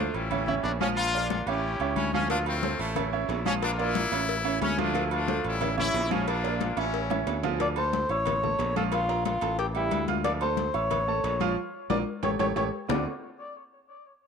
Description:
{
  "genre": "latin, salsa",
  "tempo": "181 BPM",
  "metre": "4/4",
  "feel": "straight",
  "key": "D harmonic minor",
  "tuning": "A4 = 442 Hz",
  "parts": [
    { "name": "bright trumpet section", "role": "melody", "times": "0.0-7.4 s", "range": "G3 to G4", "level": "-30 LUFS", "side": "left 3 dB", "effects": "tape echo" },
    { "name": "clear baby grand piano", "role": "accompaniment", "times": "0.0-13.0 s", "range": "D3 to F6", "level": "-31 LUFS", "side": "right 12 dB", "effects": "none" },
    { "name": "modern bright fingered electric bass", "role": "bass", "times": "0.0-13.0 s", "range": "A1 to D2", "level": "-32 LUFS", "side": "left 1 dB", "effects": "none" },
    { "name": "agogo bells and timbales", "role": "percussion", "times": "0.1-13.0 s", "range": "none", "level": "-38 LUFS", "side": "right 14 dB", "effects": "none" },
    { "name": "congas", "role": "percussion", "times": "0.1-13.0 s", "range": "none", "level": "-34 LUFS", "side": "left 12 dB", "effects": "none" },
    { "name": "cowbell and bongos", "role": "percussion", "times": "2.3-13.0 s", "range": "none", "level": "-37 LUFS", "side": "left 14 dB", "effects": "none" },
    { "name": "mellow cor anglais", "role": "melody", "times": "7.6-13.0 s", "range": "E4 to D5", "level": "-29 LUFS", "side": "left 3 dB", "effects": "tape echo" }
  ],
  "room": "moderate spring reverb, RT60 1.5 s, small room reverb",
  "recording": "1960s-style stereo with parts hard left and right",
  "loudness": "-25 LUFS",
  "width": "side -6 dB against mid",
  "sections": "0.0-7.6 A section; 7.6-12.9 B section; 12.9-14.2 C section",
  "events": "drum fill 7.1-7.6, 11.9-12.9; band accent 11.6-12.9",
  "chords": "0.3 A7; 1.0 Bb; 1.6 A7; 2.3 Dm7; 3.0 A; 3.6 Bb; 4.3 A; 4.9 Dm7; 5.6 A7; 6.3 Bb; 6.9 A7; 7.6 Dm7; 8.3 A; 8.9 Bb5; 9.6 A5; 10.2 Dm7; 10.9 A; 11.6 Bb; 12.2 A7; 12.9 Dm7"
}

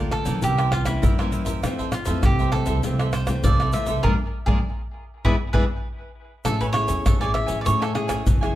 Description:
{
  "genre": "samba and choro",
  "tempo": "100 BPM",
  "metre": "4/4",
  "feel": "straight",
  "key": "unclear",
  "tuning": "A4 = 437 Hz",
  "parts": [
    { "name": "cavaquinho", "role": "melody", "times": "0.0-8.5 s", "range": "E4 to E5", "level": "-27 LUFS", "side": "right 2 dB", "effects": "tape echo" },
    { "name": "cavaquinho", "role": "accompaniment", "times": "0.0-8.5 s", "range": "E4 to G#5", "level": "-32 LUFS", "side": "right 5 dB", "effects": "none" },
    { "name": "nylon-string guitar", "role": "accompaniment", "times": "0.0-8.6 s", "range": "F2 to A4", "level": "-29 LUFS", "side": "left 3 dB", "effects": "none" },
    { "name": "upright bass", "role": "bass", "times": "0.0-8.6 s", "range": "F#1 to A2", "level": "-26 LUFS", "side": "right 1 dB", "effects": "none" },
    { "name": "pandeiro, tamborim, tube shaker and surdo", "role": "percussion", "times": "0.1-8.6 s", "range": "none", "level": "-23 LUFS", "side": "equal", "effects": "none" }
  ],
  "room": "moderate studio reverb, RT60 0.7 s",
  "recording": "heard from further back in the room",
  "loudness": "-20 LUFS",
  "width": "side -14 dB against mid",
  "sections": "0.0-6.5 A section; 6.5-8.6 B section",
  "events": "band accent 4.0-6.5",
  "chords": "0.4 C7b9; 1.6 Fmaj7; 4.0 Bb7; 5.3 E7; 6.5 Amaj7"
}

